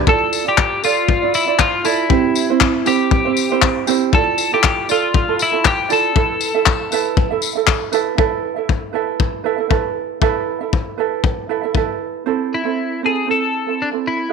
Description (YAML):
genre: acoustic pop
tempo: 118 BPM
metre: 4/4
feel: swing 55% on 16ths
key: A minor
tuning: A4 = 440 Hz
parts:
  - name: ukulele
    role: accompaniment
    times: 0.0-14.3 s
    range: C4 to E5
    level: -19 LUFS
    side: right 12 dB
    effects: none
  - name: twelve-string electric guitar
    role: melody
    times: 0.1-7.4, 12.5-14.3 s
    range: D4 to A4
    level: -19 LUFS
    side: left 4 dB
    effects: slapback echo
  - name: loose indie drum kit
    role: drums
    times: 0.1-11.9 s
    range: handclaps, kick drum, tambourine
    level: -18 LUFS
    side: left 5 dB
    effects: none
room: light reverb, studio reverb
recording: 1960s-style stereo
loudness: -15 LUFS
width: side -5 dB against mid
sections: 0.0-8.2 A section; 8.2-12.3 B section; 12.3-14.3 C section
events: none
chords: 0.1 Dmadd9; 2.1 C; 4.1 Dmadd9; 6.2 Asus2; 12.3 Am